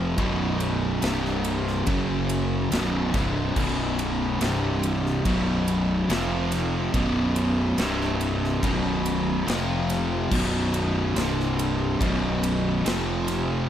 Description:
stoner and doom metal; 71 BPM; 4/4; straight; A4 = 438 Hz
fuzz guitar; riff; 0.0-13.7 s; B1 to F#3; -27 LUFS; left 1 dB; distortion
raw garage guitar; riff; 0.0-13.7 s; B1 to F#3; -27 LUFS; equal; overdrive
fuzz fingered electric bass; bass; 0.0-13.7 s; B0 to F#1; -29 LUFS; equal; overdrive
big rock drum kit; drums; 0.2-13.5 s; crash cymbal, kick drum, ride cymbal, snare drum; -32 LUFS; equal
light reverb, small room ambience; -22 LUFS; side -10 dB against mid
0.0-13.7 A section
0.2 B5; 1.0 C5; 1.9 F#5; 2.7 B5; 4.4 C5; 5.3 B5; 6.1 F5; 6.9 B5; 7.8 C5; 8.6 B5; 9.5 F5; 10.3 B5; 11.2 C5; 12.0 B5; 12.9 F5

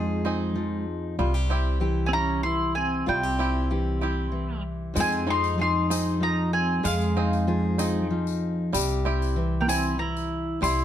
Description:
acoustic folk duo or small band; 96 BPM; 3/4; straight; A4 = 440 Hz
mandolin; melody; 0.0-10.8 s; Eb5 to C6; -28 LUFS; left 1 dB
pedal steel guitar; second line; 0.0-10.8 s; Ab3 to E4; -30 LUFS; right 2 dB
fingerpicked steel-string acoustic guitar; accompaniment; 0.0-10.8 s; F2 to Ab4; -28 LUFS; left 2 dB
bluegrass banjo; arpeggios; 0.0-10.8 s; G3 to Ab4; -34 LUFS; right 5 dB
upright bass; bass; 0.0-10.8 s; C2 to F2; -28 LUFS; equal
tambourine; percussion; 5.0-10.8 s; -34 LUFS; left 8 dB
light reverb; -23 LUFS; side -10 dB against mid
0.0-10.8 A section
0.0 Fm7; 1.2 C; 5.0 Fm7; 8.7 C

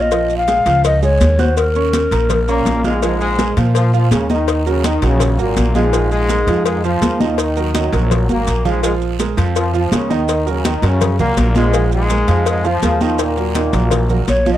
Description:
latin, salsa; 165 BPM; 4/4; straight; Bb minor; A4 = 439 Hz
mellow hollow tenor recorder; melody; 0.0-2.8, 14.3-14.6 s; Bb4 to F5; -16 LUFS; left 2 dB
warm concert grand piano; accompaniment; 0.0-14.6 s; Eb3 to Gb6; -21 LUFS; right 8 dB; cassette tape
upright bass; bass; 0.0-14.6 s; Ab1 to Bb2; -17 LUFS; equal
congas; percussion; 0.1-14.6 s; -21 LUFS; left 1 dB
cowbell; percussion; 0.1-14.5 s; -24 LUFS; left 11 dB
guiro; percussion; 0.1-14.6 s; -35 LUFS; right 11 dB
maracas; percussion; 0.1-14.6 s; -32 LUFS; right 10 dB
brilliant trombone section; melody; 2.5-14.3 s; Gb2 to F4; -20 LUFS; left 3 dB
light reverb, studio reverb; home recording on cassette; -13 LUFS; side -12 dB against mid
0.0-3.0 A section; 3.0-14.6 B section
drum fill 8.3-8.8
0.1 Bbm7; 4.5 Ebm7; 5.9 Bb5; 7.4 Ebm; 8.8 Bbm7; 10.3 Ebm7; 11.7 Bb5; 13.2 Ebm

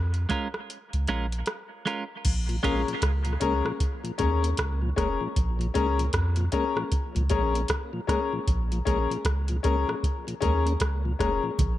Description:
dub reggae; 77 BPM; 4/4; swing 60% on 16ths; Bb minor; A4 = 440 Hz
soft dub sub bass; bass; 0.0-11.8 s; F1 to F2; -26 LUFS; equal
soft vintage rhythm box; drums; 0.1-11.8 s; crash cymbal, hi-hat, kick drum, rim click; -29 LUFS; equal
clean electric guitar; accompaniment; 0.3-2.8 s; Ab3 to Bb4; -32 LUFS; right 4 dB; dub echo
mellow tonewheel organ; accompaniment; 2.5-11.5 s; Bb2 to Db4; -34 LUFS; left 2 dB; slow rotary speaker, dub echo
clear concert grand piano; stabs; 2.6-11.4 s; Db4 to Bb4; -29 LUFS; left 6 dB; dub echo
congas; percussion; 11.6-11.8 s; -31 LUFS; right 6 dB
light reverb, digital ambience; -24 LUFS; side -14 dB against mid
0.0-2.3 A section; 2.3-11.8 B section
break 0.0-2.3; part muted 2.3-11.6
0.0 Bbm7

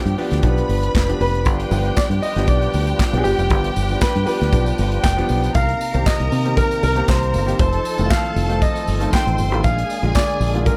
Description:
disco; 117 BPM; 4/4; straight; C minor; A4 = 436 Hz
clear studio string section; second line; 0.0-10.8 s; G4 to C6; -30 LUFS; equal
warm baby grand piano; accompaniment; 0.0-10.8 s; D3 to G4; -28 LUFS; equal
fingered electric bass; bass; 0.1-10.7 s; F1 to C3; -22 LUFS; equal
modern studio drum kit; drums; 0.1-10.8 s; handclaps, hi-hat, kick drum, snare drum; -23 LUFS; equal
bright grand piano; melody; 1.2-10.8 s; G4 to G5; -26 LUFS; equal
percussive tonewheel organ; sustained chords; 1.5-10.8 s; C3 to B4; -32 LUFS; equal; overdrive, chorus vibrato, slow rotary speaker
tambourine; percussion; 1.5-10.8 s; -40 LUFS; equal
studio reverb; -18 LUFS; mono
0.0-5.6 A section; 5.6-10.8 B section
0.0 G7; 5.6 Cm7; 7.6 F7; 9.6 Bb7

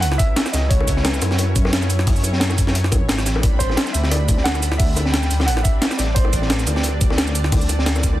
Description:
liquid drum and bass; 176 BPM; 4/4; swing 54% on 16ths; A4 = 440 Hz
dark grand piano; melody; 0.0-1.5, 3.6-7.0 s; B4 to G5; -27 LUFS; right 2 dB; dub echo
lush unison pad; sustained chords; 0.0-8.2 s; F#3 to B5; -28 LUFS; equal; chorus, sidechain pumping
dark detuned saw bass; bass; 0.0-8.2 s; G#1 to F#2; -20 LUFS; equal
breakbeat sampler-style drum kit; drums; 0.0-8.1 s; hi-hat, shaker, snare drum; -23 LUFS; equal
crunchy breakbeat drum kit; drums; 0.0-8.0 s; hi-hat, snare drum; -26 LUFS; equal; high-pass filter on hats, high-pass filter on snare, high-pass filter on room
bongos; percussion; 0.1-8.2 s; -30 LUFS; left 5 dB
electronic kick drum; drums; 0.2-8.1 s; -18 LUFS; equal
studio ambience; dense, heavily limited modern master; -16 LUFS; side -14 dB against mid
0.0-8.2 A section
0.0 C#m11; 3.3 Am11

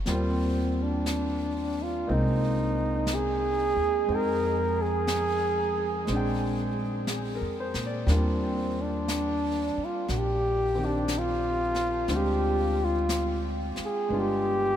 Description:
jazz ballad; 60 BPM; 4/4; swing 67% on 8ths; Eb major; A4 = 437 Hz
clear concert grand piano; accompaniment; 0.0-14.8 s; Eb3 to G5; -32 LUFS; left 1 dB
mellow flugelhorn; melody; 0.1-14.8 s; Bb3 to Bb4; -28 LUFS; right 1 dB
upright bass; bass; 0.1-14.8 s; G1 to Bb2; -30 LUFS; equal
jazz brush drum kit; drums; 0.1-14.8 s; brushed snare drum, hi-hat, snare drum; -38 LUFS; left 1 dB
moderate huge ambient reverb, RT60 8.2 s; in a vast, echoing space; -25 LUFS; side -10 dB against mid
0.0-14.8 A section
0.1 Eb6; 2.1 Abadd9/C; 4.1 Fm7; 6.1 Bb13; 8.1 Ebmaj7; 12.1 Dm7b5; 14.1 G7b9

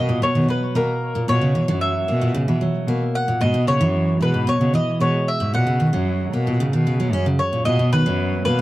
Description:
folktronica; 113 BPM; 4/4; straight; B major; A4 = 440 Hz
mandolin; melody; 0.0-8.6 s; A#4 to F#5; -23 LUFS; equal; tape echo
picked steel-string acoustic guitar; arpeggios; 0.0-8.6 s; G#2 to C#4; -21 LUFS; right 1 dB
clear cello; bass; 0.0-8.6 s; F#2 to B2; -22 LUFS; equal
little or no reverb; dry, close 1970s-style studio recording; -17 LUFS; side -16 dB against mid
0.0-8.6 A section
0.0 Bmaj7(no3); 1.3 F#7; 3.4 C#m7; 5.5 D#m7 (rootless); 7.7 Bmaj7

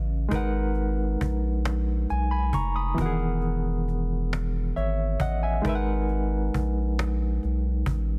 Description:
slow six-eight R&B; 45 BPM (dotted quarters); 6/8; straight; G# minor; A4 = 440 Hz
barky reed electric piano; accompaniment; 0.0-8.2 s; C#3 to D#6; -31 LUFS; equal; overdrive, fast tremolo
round analog bass; bass; 0.0-8.2 s; E1 to B1; -29 LUFS; equal
cajon; drums; 0.3-8.1 s; -33 LUFS; equal
little or no reverb; dense, heavily limited modern master; -26 LUFS; mono
0.0-8.2 A section
0.3 G#m7; 3.0 Emaj9#11; 5.6 G#m9

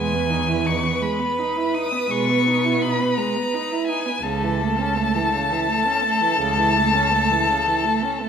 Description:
classical, slow romantic movement for string quartet; 56 BPM (dotted quarters); 12/8; rubato; A4 = 441 Hz
rich violin; melody; 0.0-8.3 s; G#5 to D#6; -22 LUFS; left 5 dB
rich violin; second line; 0.0-8.3 s; A4 to B4; -26 LUFS; right 1 dB
rich viola; accompaniment; 0.0-8.3 s; C#3 to E4; -25 LUFS; right 4 dB
rich cello; bass; 0.0-7.3 s; C#2 to B2; -25 LUFS; right 3 dB
wet recital hall reverb, RT60 1.8 s; recorded in a church or concert hall; -18 LUFS; side -7 dB against mid
0.0-8.3 A section
0.0 Emaj7; 4.2 A/C#

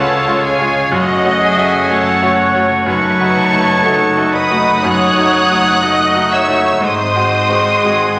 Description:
classical, romantic movement for piano and orchestra; 61 BPM; 4/4; rubato; A4 = 439 Hz
clear concert grand piano; melody; 0.0-8.2 s; C#2 to F#4; -19 LUFS; equal
clear studio violin section; melody; 0.0-8.2 s; F#5 to F#6; -23 LUFS; equal
bright clarinet; second line; 0.0-8.2 s; F#4 to F#5; -22 LUFS; equal
clear studio violin section; second line; 0.0-8.2 s; C#5 to D#6; -27 LUFS; equal
flute section; second line; 0.0-8.2 s; C#5 to D#6; -23 LUFS; equal
rich studio viola section; accompaniment; 0.0-8.2 s; G#4 to D#5; -20 LUFS; equal
dark French horn section; sustained chords; 0.0-8.2 s; G#3 to D#4; -26 LUFS; equal
clear trumpet; stabs; 0.0-8.2 s; E#4 to F#4; -24 LUFS; equal
rich studio double bass section; bass; 0.0-8.2 s; F#1 to C#2; -30 LUFS; equal
warm studio cello section; bass; 0.0-8.2 s; F#2 to C#3; -29 LUFS; equal
wet scoring stage reverb, RT60 1.7 s; -13 LUFS; mono
0.0-8.2 A section
0.0 C#; 0.9 F#m; 2.9 D#m7b5/F#; 6.8 G#7

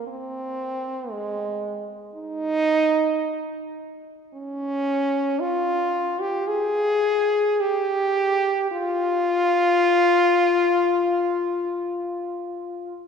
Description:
classical, free, expressive piece for unaccompanied French horn; free time; A4 = 441 Hz
clear French horn; solo; 0.0-12.9 s; Ab3 to Ab4; -21 LUFS; equal
wet church reverb, RT60 3.0 s; heard from further back in the room; -20 LUFS; side -6 dB against mid
0.0-13.1 A section

